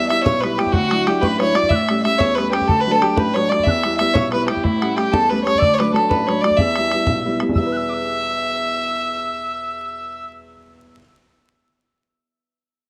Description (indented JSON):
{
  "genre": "celtic folk, Celtic jig",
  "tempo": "123 BPM (dotted quarters)",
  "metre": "6/8",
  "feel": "straight",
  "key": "E dorian",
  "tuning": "A4 = 441 Hz",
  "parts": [
    { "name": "dark fiddle", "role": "melody", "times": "0.0-10.3 s", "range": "E4 to E5", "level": "-21 LUFS", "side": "equal", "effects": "none" },
    { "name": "bright reedy mid whistle", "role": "second line", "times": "0.0-10.3 s", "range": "E5 to F#6", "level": "-29 LUFS", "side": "equal", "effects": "none" },
    { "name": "dark upright piano", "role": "accompaniment", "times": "0.0-11.0 s", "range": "A1 to B4", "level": "-24 LUFS", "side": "equal", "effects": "none" },
    { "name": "bodhran", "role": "percussion", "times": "0.1-7.7 s", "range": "none", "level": "-25 LUFS", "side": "equal", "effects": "none" }
  ],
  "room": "moderate plate reverb, RT60 2.9 s",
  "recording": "vinyl crackle",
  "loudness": "-18 LUFS",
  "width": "mono",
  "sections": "0.0-7.6 A section; 7.6-9.5 B section",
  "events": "none",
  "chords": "0.0 Em; 0.7 Dadd9; 1.7 A7; 2.7 D; 3.7 Em; 4.6 A7; 5.6 D; 6.6 Em"
}